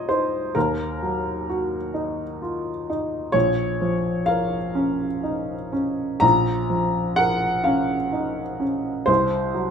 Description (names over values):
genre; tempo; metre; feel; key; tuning
neoclassical minimalist piano; 42 BPM (dotted quarters); 6/8; rubato; Bb minor; A4 = 440 Hz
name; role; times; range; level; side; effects
warm upright piano; solo; 0.0-9.7 s; Bb1 to Bb5; -21 LUFS; equal; none
room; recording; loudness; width
moderate recital hall reverb, RT60 1.3 s; minimal, uncompressed stereo recording; -21 LUFS; side -7 dB against mid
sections
0.0-9.7 A section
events
none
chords
0.0 Cdim; 0.6 Ebm; 3.3 Bbm; 9.1 C(b5, no3)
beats
| 0.55 1.95 | 3.35 4.76 | 6.23 7.66 | 9.09